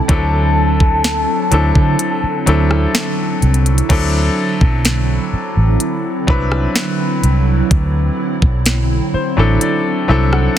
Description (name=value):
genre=contemporary R&B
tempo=63 BPM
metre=4/4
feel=straight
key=unclear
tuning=A4 = 440 Hz
part: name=soft octave-layered synth lead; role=melody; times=0.0-3.4 s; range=A5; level=-20 LUFS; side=left 2 dB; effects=chorus, ping-pong delay
part: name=clear baby grand piano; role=accompaniment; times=0.0-10.6 s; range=F#3 to F#5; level=-19 LUFS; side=left 2 dB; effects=none
part: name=hollow soft pad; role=sustained chords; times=0.0-10.6 s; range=D3 to E4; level=-22 LUFS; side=right 3 dB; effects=ensemble chorus, sidechain pumping
part: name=vintage muted fingered electric bass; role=bass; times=0.1-10.5 s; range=A1 to D3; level=-15 LUFS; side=equal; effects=none
part: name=trap drum kit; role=drums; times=0.1-10.5 s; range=crash cymbal, hi-hat, kick drum, rim click, snare drum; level=-16 LUFS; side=equal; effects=none
room=little or no reverb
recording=dense, heavily limited modern master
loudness=-12 LUFS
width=side -11 dB against mid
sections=0.0-3.9 A section; 3.9-10.6 B section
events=kick muted 2.0-3.9, 9.6-10.6; grand piano fill 8.7-10.6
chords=0.1 D9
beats=| 0.09 1.04 2.00 2.95 | 3.90 4.85 5.80 6.76 | 7.71 8.66 9.61 10.57